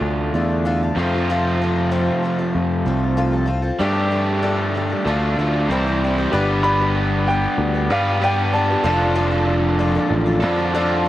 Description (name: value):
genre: rock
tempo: 95 BPM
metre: 4/4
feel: straight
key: unclear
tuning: A4 = 440 Hz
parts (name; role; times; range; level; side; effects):
- picked twelve-string acoustic guitar; accompaniment; 0.0-11.1 s; C3 to C5; -24 LUFS; left 3 dB; cassette tape
- raw garage guitar; riff; 0.0-11.1 s; F2 to B4; -21 LUFS; right 1 dB; overdrive, cassette tape
- picked electric bass; bass; 0.0-11.1 s; F1 to G2; -21 LUFS; equal; none
- warm upright piano; accompaniment; 6.3-11.1 s; F4 to B5; -31 LUFS; right 2 dB; none
- dark baby grand piano; melody; 6.6-9.4 s; F5 to B5; -22 LUFS; equal; cassette tape, tape echo
room: light reverb, studio reverb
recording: home recording on cassette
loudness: -17 LUFS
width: side -14 dB against mid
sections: 0.0-6.3 A section; 6.3-11.1 B section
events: upright piano fill 10.1-11.1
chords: 0.0 Dm; 1.0 F; 3.8 Gsus2; 5.1 Dm; 5.7 C; 6.3 G; 8.9 Dm/F